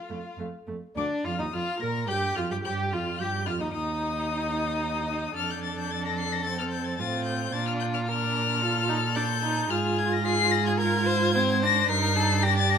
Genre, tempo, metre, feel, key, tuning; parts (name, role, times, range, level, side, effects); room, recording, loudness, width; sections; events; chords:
quick classical-period movement for string quartet; 110 BPM; 4/4; rubato; Bb major; A4 = 439 Hz
rich violin; melody; 0.0-12.8 s; F5 to C7; -29 LUFS; left 7 dB
rich violin; second line; 0.0-12.8 s; D4 to C5; -31 LUFS; left 3 dB
rich viola; accompaniment; 0.1-12.8 s; A3 to Bb4; -31 LUFS; right 2 dB
dark cello; bass; 0.1-12.8 s; D2 to Bb2; -30 LUFS; right 4 dB
moderate large studio reverb, RT60 1.2 s; minimal, uncompressed stereo recording; -24 LUFS; side -7 dB against mid
1.0-12.8 A section
0.0 F; 1.0 Bb; 3.2 Eb; 5.4 F; 7.5 Bb; 9.7 Bb7/Ab; 11.9 Eb/G